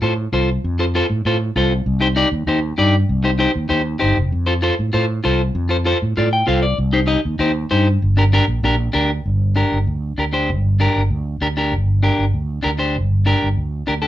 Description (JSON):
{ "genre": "latin, cumbia", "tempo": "195 BPM", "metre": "4/4", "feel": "straight", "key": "G minor", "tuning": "A4 = 439 Hz", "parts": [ { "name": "electric guitar at the edge of break-up", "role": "accompaniment", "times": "0.0-14.1 s", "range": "D4 to G5", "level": "-18 LUFS", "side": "left 1 dB", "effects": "none" }, { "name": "fretless electric bass", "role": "bass", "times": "0.0-14.1 s", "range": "F1 to A2", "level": "-18 LUFS", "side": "equal", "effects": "none" } ], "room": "moderate small room reverb, RT60 0.5 s", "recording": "minimal, uncompressed stereo recording", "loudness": "-16 LUFS", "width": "side -13 dB against mid", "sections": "0.0-9.3 A section; 9.3-14.1 B section", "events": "clean electric guitar fill 6.2-6.8", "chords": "0.0 F; 1.9 Cm; 4.3 F; 6.8 Cm; 8.0 Gm" }